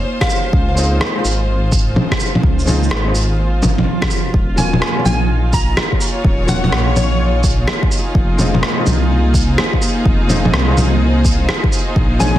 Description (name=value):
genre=future garage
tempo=126 BPM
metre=4/4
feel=swing 65% on 16ths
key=unclear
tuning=A4 = 445 Hz
part: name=rich symphonic string section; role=sustained chords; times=0.0-12.4 s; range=Bb3 to Db5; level=-22 LUFS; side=equal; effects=sidechain pumping
part: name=dark detuned saw bass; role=bass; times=0.0-12.4 s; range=Eb1 to Db2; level=-16 LUFS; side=equal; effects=sidechain pumping
part: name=glassy wavetable pluck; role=melody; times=0.2-0.5, 4.6-7.2, 12.2-12.4 s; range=Db5 to Bb5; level=-24 LUFS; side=left 1 dB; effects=chorus, tape echo
part: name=electronic kick drum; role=drums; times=0.2-12.1 s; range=none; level=-16 LUFS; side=equal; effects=none
part: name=electronic rim click, cabasa, shaker and bongos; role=drums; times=0.2-12.4 s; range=none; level=-18 LUFS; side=equal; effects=soft clipping on snare
part: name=felt-muted upright piano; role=accompaniment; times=0.8-12.4 s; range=Gb3 to F4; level=-25 LUFS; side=left 2 dB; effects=vintage 12-bit sampler grit, sidechain pumping, analog delay
room=light reverb, digital ambience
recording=dense, heavily limited modern master, vinyl crackle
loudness=-13 LUFS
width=side -13 dB against mid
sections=0.0-4.3 A section; 4.3-12.4 B section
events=none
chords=0.0 Bb9sus4; 0.5 Dbmaj9; 4.3 Ebm9; 8.2 Fm7